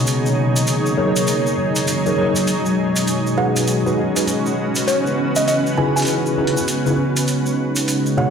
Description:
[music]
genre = glitch hop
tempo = 100 BPM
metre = 4/4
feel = swing 62% on 16ths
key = G# minor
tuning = A4 = 442 Hz
[part]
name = warm analog pad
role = sustained chords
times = 0.0-8.3 s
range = B2 to D#5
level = -22 LUFS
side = left 1 dB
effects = chorus
[part]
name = granular cloud pad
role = texture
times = 0.0-8.3 s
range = B2 to C#5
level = -20 LUFS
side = right 1 dB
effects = built-in reverb
[part]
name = electronic hi-hat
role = drums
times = 0.1-8.0 s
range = none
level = -26 LUFS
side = right 2 dB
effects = studio reverb
[part]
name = tube shaker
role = percussion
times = 0.1-8.2 s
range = none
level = -26 LUFS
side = right 1 dB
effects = none
[part]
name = mellow tine electric piano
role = stabs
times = 1.0-8.3 s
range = B2 to C#5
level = -22 LUFS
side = left 1 dB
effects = medium stereo tremolo, vintage 12-bit sampler grit, low-pass filter, ping-pong delay
[part]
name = woody wave-folded pluck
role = melody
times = 3.4-8.3 s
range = C#5 to G#5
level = -23 LUFS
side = equal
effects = chorus, ping-pong delay
[sound]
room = moderate plate reverb, RT60 1.4 s, digital ambience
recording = played on a big sound system in a bare room, stone room reverb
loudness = -16 LUFS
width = side -7 dB against mid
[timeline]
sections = 0.0-8.3 A section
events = filter sweep on analog synth pad 0.0-8.3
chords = 0.1 F#6; 2.5 G#m7; 4.9 C#m9; 7.3 B69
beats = | 0.08 0.68 1.28 1.88 | 2.48 3.08 3.68 4.28 | 4.88 5.48 6.08 6.68 | 7.28 7.88

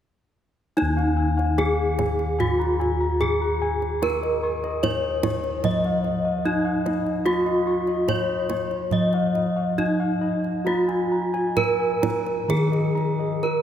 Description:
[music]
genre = Javanese gamelan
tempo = 73 BPM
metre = 4/4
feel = uneven beats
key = Eb slendro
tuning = A4 = 440 Hz
[part]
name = gamelan-type bronze metallophone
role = melody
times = 0.8-13.6 s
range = Eb4 to Eb5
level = -24 LUFS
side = right 1 dB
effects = none
[part]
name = gamelan-type bossed gongs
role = arpeggios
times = 0.8-13.6 s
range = Eb5 to Db6-40c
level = -30 LUFS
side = left 4 dB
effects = none
[part]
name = gamelan-type bossed gongs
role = bass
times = 0.8-13.6 s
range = Eb2 to Bb4+20c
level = -26 LUFS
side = left 1 dB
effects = none
[part]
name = kendang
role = percussion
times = 0.8-13.6 s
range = none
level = -31 LUFS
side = right 4 dB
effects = none
[sound]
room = wet cathedral reverb, RT60 5.5 s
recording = recorded in a church or concert hall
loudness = -21 LUFS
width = side -9 dB against mid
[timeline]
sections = 0.8-13.6 A section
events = none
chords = none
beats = | 0.78 1.59 2.40 3.21 | 4.02 4.83 5.64 6.45 | 7.26 8.08 8.92 9.78 | 10.66 11.56 12.49 13.44

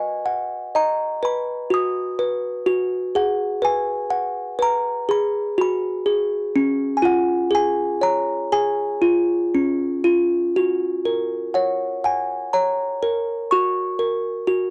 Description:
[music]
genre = children's music, lullaby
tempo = 62 BPM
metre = 4/4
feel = rubato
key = F# major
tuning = A4 = 438 Hz
[part]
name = music box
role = solo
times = 0.0-14.7 s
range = C#4 to D#6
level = -18 LUFS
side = equal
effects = none
[sound]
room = little or no reverb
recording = dry, close 1970s-style studio recording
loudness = -18 LUFS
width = side -28 dB against mid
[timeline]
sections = 0.0-10.6 A section; 10.6-14.7 B section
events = none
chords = 0.0 B/F#; 2.7 G#m7; 6.6 C#; 10.6 F#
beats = 0.76 1.72 | 2.69 3.65 4.62 5.59 | 6.56 7.53 8.53 9.55 | 10.56 11.55 12.54 13.52 | 14.49

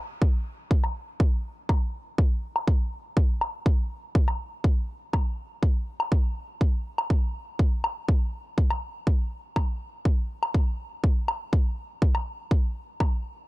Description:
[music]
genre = techno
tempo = 122 BPM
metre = 4/4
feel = straight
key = none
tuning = none
[part]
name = electronic kick drum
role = drums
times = 0.2-13.1 s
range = none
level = -22 LUFS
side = equal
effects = none
[part]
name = woodblock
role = drums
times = 0.8-13.1 s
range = none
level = -32 LUFS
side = left 2 dB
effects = overdrive, low-pass filter on hats, low-pass filter on snare, low-pass filter on toms, low-pass filter on cymbals, low-pass filter on perc
[sound]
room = digital ambience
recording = none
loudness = -24 LUFS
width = side -20 dB against mid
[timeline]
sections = 0.0-13.5 A section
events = filter sweep on drum 0.0-13.5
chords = none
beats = 0.22 | 0.71 1.20 1.69 2.18 | 2.68 3.17 3.66 4.15 | 4.64 5.13 5.63 6.12 | 6.61 7.10 7.59 8.09 | 8.58 9.07 9.56 10.05 | 10.54 11.04 11.53 12.02 | 12.51 13.00

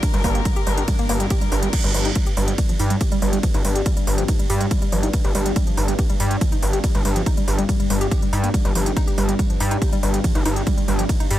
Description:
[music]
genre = driving peak-time techno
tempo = 141 BPM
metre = 4/4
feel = straight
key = G minor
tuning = A4 = 441 Hz
[part]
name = woody wave-folded pluck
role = riff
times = 0.0-11.4 s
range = F3 to G4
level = -26 LUFS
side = equal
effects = chorus, sidechain pumping, dub echo
[part]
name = deep dark ambient pad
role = drone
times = 0.0-11.4 s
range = G2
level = -28 LUFS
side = left 1 dB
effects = chorus, built-in reverb, sidechain pumping
[part]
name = electronic kick drum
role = drums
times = 0.0-11.2 s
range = none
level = -21 LUFS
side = equal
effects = overdrive
[part]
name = techno drum kit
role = drums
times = 0.0-11.4 s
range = crash cymbal, hi-hat, ride cymbal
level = -29 LUFS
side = right 2 dB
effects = overdrive
[part]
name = rich chamber string section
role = texture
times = 0.0-1.7 s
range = Bb4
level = -31 LUFS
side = left 8 dB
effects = sidechain pumping
[part]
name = gritty driven synth bass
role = bass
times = 0.1-11.4 s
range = G1 to G2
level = -21 LUFS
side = equal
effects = sidechain pumping
[sound]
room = digital ambience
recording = none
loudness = -18 LUFS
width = side -13 dB against mid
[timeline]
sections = 0.0-1.7 A section; 1.7-11.4 A section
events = drop 0.0-1.7, 1.7-11.4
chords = 0.0 Gm; 1.7 N.C.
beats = | 0.03 0.46 0.88 1.31 | 1.73 2.16 2.58 3.01 | 3.43 3.86 4.29 4.71 | 5.14 5.56 5.99 6.41 | 6.84 7.26 7.69 8.11 | 8.54 8.96 9.39 9.82 | 10.24 10.67 11.09

